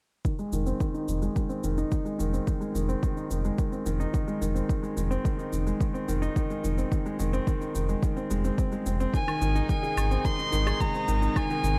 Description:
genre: piano and strings electronica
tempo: 108 BPM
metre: 4/4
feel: straight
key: F minor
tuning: A4 = 435 Hz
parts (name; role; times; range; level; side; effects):
- felt-muted upright piano; riff; 0.2-11.8 s; Eb3 to Ab4; -32 LUFS; equal; low-pass filter, delay
- electronic kick drum; drums; 0.2-11.5 s; none; -30 LUFS; equal; none
- shaker and woodblock; drums; 0.3-11.8 s; none; -43 LUFS; equal; none
- round analog bass; bass; 0.5-11.8 s; F1 to Ab1; -30 LUFS; equal; tube saturation, sidechain pumping
- dark violin; melody; 9.1-11.8 s; Ab5 to C6; -32 LUFS; equal; none
- dark studio string section; sustained chords; 9.1-11.8 s; C3 to Ab4; -38 LUFS; equal; sidechain pumping
room: light reverb, small room ambience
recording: none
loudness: -28 LUFS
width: mono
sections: 0.3-11.8 A section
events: filter sweep on felt piano 0.3-11.8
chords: 0.3 Fm7; 9.1 Ab

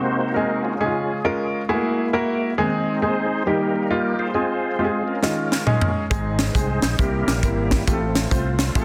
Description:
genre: uptempo gospel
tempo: 136 BPM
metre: 4/4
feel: swing 63% on 8ths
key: Ab major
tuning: A4 = 443 Hz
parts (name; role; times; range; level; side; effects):
- clear concert grand piano; accompaniment; 0.0-8.8 s; Ab2 to C5; -25 LUFS; equal; none
- bright tonewheel organ; sustained chords; 0.0-8.8 s; G3 to C5; -28 LUFS; equal; slow rotary speaker, chorus vibrato
- tight funk drum kit; drums; 5.2-8.8 s; hi-hat, kick drum, snare drum, toms; -24 LUFS; equal; none
- fingered electric bass; bass; 6.1-8.8 s; Ab1 to C2; -27 LUFS; equal; none
room: moderate recital hall reverb, RT60 1.7 s, studio ambience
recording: dense, heavily limited modern master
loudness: -22 LUFS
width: mono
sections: 0.0-8.8 A section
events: tonewheel organ solo 0.0-8.8; drum fill 5.2-6.1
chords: 0.0 Ab7/C; 0.8 Db; 1.7 Gb9; 2.6 Ab/Eb; 3.5 Eb; 4.3 Fm; 5.2 Eb9sus4; 6.1 Ab; 7.0 C7; 7.9 F/A

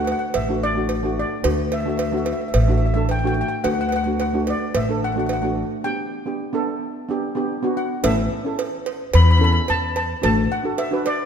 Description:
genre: calypso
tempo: 109 BPM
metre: 4/4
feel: straight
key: D major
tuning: A4 = 444 Hz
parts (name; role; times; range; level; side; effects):
- steel pan; melody; 0.0-11.3 s; D5 to B5; -25 LUFS; left 1 dB; none
- steel pan; accompaniment; 0.0-11.3 s; A3 to B4; -24 LUFS; right 2 dB; none
- upright bass; bass; 0.0-10.5 s; A1 to E2; -20 LUFS; left 1 dB; none
- cowbell; percussion; 0.1-11.2 s; none; -27 LUFS; right 4 dB; none
room: moderate concert hall reverb, RT60 2.1 s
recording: minimal, uncompressed stereo recording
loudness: -19 LUFS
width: side -8 dB against mid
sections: 0.0-8.0 A section; 8.0-11.3 B section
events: break 5.8-8.0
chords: 0.0 D; 5.8 G; 8.0 A; 10.2 D/A

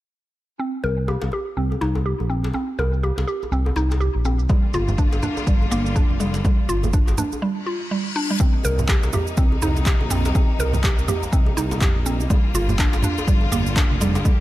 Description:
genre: afro house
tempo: 123 BPM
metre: 4/4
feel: swing 59% on 16ths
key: C minor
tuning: A4 = 441 Hz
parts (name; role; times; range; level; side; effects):
- mallet-like synth pluck; arpeggios; 0.6-14.4 s; G3 to Bb4; -25 LUFS; right 1 dB; chorus, cassette tape, sidechain pumping, dub echo
- deep house drum kit; drums; 0.6-14.4 s; handclaps, shaker, toms; -27 LUFS; right 1 dB; low-pass filter on perc, low-pass filter on snare, low-pass filter on toms, low-pass filter on room
- smooth synth bass; bass; 0.8-14.2 s; F1 to C2; -23 LUFS; equal; tube saturation, sidechain pumping
- djembe; percussion; 0.8-14.4 s; none; -33 LUFS; left 2 dB; none
- bright studio string section; sustained chords; 4.5-14.4 s; C3 to G4; -30 LUFS; left 3 dB; sidechain pumping
- electronic kick drum; drums; 4.5-14.4 s; none; -19 LUFS; equal; none
- congas; percussion; 4.5-14.4 s; none; -28 LUFS; right 1 dB; none
- reverse cymbal; sound effects; 7.6-8.4 s; none; -31 LUFS; left 4 dB; none
room: digital ambience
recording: lossy compression artefacts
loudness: -18 LUFS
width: side -15 dB against mid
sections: 0.6-8.4 A section; 8.4-14.4 B section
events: filter sweep on synth pluck 0.6-8.4; break 7.4-8.4; reverse cymbal 7.6-8.4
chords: 0.6 C7(no3); 4.5 Gm7; 8.4 Cm7; 12.3 Gm7

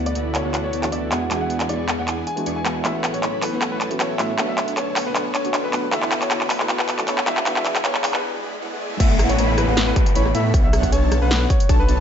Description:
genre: future bass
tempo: 156 BPM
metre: 4/4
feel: half-time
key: A major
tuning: A4 = 440 Hz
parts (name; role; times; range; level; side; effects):
- felt-muted upright piano; accompaniment; 0.0-9.0 s; D3 to C#5; -30 LUFS; right 2 dB; sidechain pumping, tape echo
- airy breathy pad; sustained chords; 0.0-8.2 s; D3 to G#4; -36 LUFS; left 1 dB; chorus, sidechain pumping
- dense compressed supersaw; riff; 0.0-12.0 s; B3 to C#6; -27 LUFS; right 1 dB; sidechain pumping, low-pass filter
- wide detuned saw bass; bass; 0.0-12.0 s; A1 to A2; -25 LUFS; equal; chorus, sidechain pumping
- clear grand piano; melody; 0.1-12.0 s; B4 to G#5; -27 LUFS; left 1 dB; sidechain pumping, dub echo
- big-room dance drum kit; drums; 0.1-12.0 s; crash cymbal, handclaps, hi-hat, rim click, snare drum; -23 LUFS; equal; high-pass filter on snare, high-pass filter on hats, high-pass filter on cymbals
- riser and downlifter; sound effects; 6.5-12.0 s; none; -29 LUFS; left 1 dB; none
- airy dreamy lead; arpeggios; 9.0-12.0 s; F#5 to B5; -30 LUFS; equal; chorus, cassette tape, sidechain pumping
- electronic kick drum; drums; 9.0-11.8 s; none; -18 LUFS; equal; none
room: light reverb, digital ambience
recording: high-pass filter, nothing above 7.8 kHz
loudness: -18 LUFS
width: side -8 dB against mid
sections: 0.0-9.0 A section; 9.0-12.0 B section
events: build-up 0.0-9.0; drum fill 0.0-8.2; filter sweep on supersaw synth 0.0-9.0; filter sweep 0.0-9.0; break 8.2-9.0; drop 9.0-12.0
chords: 0.0 D69; 1.1 E7; 2.8 A69; 4.4 Bm9; 5.9 D69; 7.3 E7; 9.0 A69; 10.5 Bm9

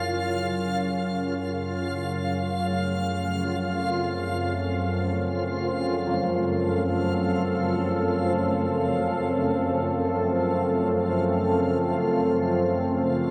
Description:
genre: dark ambient drone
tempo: free time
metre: none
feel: none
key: unclear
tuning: A4 = 442 Hz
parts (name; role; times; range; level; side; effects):
- old church bells; arpeggios; 0.0-12.2 s; F3 to C#4; -39 LUFS; equal; none
- organ-like drone; drone; 0.0-13.3 s; F#2 to C#3; -30 LUFS; equal; ensemble chorus, built-in reverb
- backwards swelling texture; texture; 0.0-13.3 s; E#4 to E#5; -34 LUFS; equal; built-in reverb
- sweeping resonant pad; sustained chords; 1.4-13.3 s; F#2 to A4; -28 LUFS; equal; chorus
room: wet huge ambient reverb, RT60 7.2 s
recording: none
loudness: -25 LUFS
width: mono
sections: 0.0-13.3 A section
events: filter sweep on synth drone 0.0-13.3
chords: 0.0 F#5; 1.4 F/F#

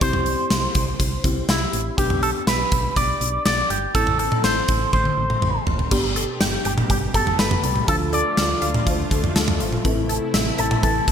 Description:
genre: synth-pop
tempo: 122 BPM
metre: 4/4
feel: straight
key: unclear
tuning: A4 = 439 Hz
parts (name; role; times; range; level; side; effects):
- electric guitar with an envelope filter; melody; 0.0-11.1 s; E4 to D5; -23 LUFS; equal; wide subtle chorus, shimmer reverb, digital delay
- muted felt-like synth keys; accompaniment; 0.0-11.1 s; B3 to A4; -29 LUFS; left 1 dB; chorus, phaser, shimmer reverb
- solid FM bass; bass; 0.0-11.1 s; F1 to D2; -26 LUFS; equal; none
- gated 80s drum kit; drums; 0.0-11.1 s; crash cymbal, hi-hat, kick drum, snare drum, toms; -22 LUFS; equal; none
- brassy analog pad; sustained chords; 5.9-11.1 s; B2 to G4; -29 LUFS; left 1 dB; chorus, shimmer reverb
- resonant blip pluck; arpeggios; 5.9-11.1 s; E3 to G5; -29 LUFS; equal; phaser, shimmer reverb, digital delay
room: moderate lush hall reverb, RT60 2.2 s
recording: bright 1980s-style digital production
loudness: -18 LUFS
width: side -8 dB against mid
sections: 0.0-5.9 A section; 5.9-11.1 B section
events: drum fill 4.9-5.9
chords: 0.0 C; 2.0 G/B; 3.9 Am; 5.9 Gadd9; 7.9 Dm; 9.8 Am

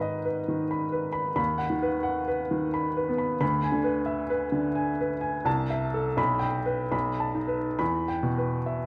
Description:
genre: classical, romantic character piece for solo piano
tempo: 65-90 BPM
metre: 3/4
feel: rubato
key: unclear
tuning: A4 = 441 Hz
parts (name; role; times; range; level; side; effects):
- clear upright piano; solo; 0.0-8.9 s; B1 to B5; -28 LUFS; equal; none
room: moderate scoring stage reverb, RT60 1.8 s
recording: vinyl crackle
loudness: -28 LUFS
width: mono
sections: 0.0-8.9 A section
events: none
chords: 0.0 G#m; 1.4 B/D#; 3.4 E7/D; 5.5 Am/C; 6.2 G/B; 6.9 B7; 7.8 Em

